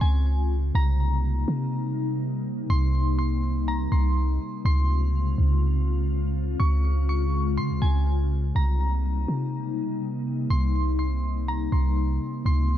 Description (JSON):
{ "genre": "hip hop, atmospheric cloud-rap", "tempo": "123 BPM", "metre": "4/4", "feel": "half-time", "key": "unclear", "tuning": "A4 = 444 Hz", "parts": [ { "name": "glassy synth bell", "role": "melody", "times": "0.0-12.8 s", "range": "Ab5 to Db6", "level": "-34 LUFS", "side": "equal", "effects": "chorus, phaser, low-pass filter, ping-pong delay" }, { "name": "glassy FM pad", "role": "sustained chords", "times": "0.0-12.8 s", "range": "C3 to F4", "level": "-29 LUFS", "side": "left 2 dB", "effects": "ensemble chorus, built-in reverb" }, { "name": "clean 808-style bass", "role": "bass", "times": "0.0-12.8 s", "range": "C2 to Db3", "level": "-23 LUFS", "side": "equal", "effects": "none" } ], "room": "little or no reverb", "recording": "dark, warm production", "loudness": "-22 LUFS", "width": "side -11 dB against mid", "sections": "0.0-8.6 A section; 8.6-12.8 B section", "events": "none", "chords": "0.0 Dbmaj7; 0.7 Cm7; 4.7 Dbmaj7; 8.6 Cm7", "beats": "0.26 | 0.75 1.24 1.72 2.21 | 2.70 3.19 3.67 4.16 | 4.65 5.14 5.63 6.11 | 6.60 7.09 7.58 8.06 | 8.55 9.04 9.53 10.02 | 10.50 10.99 11.48 11.97 | 12.46" }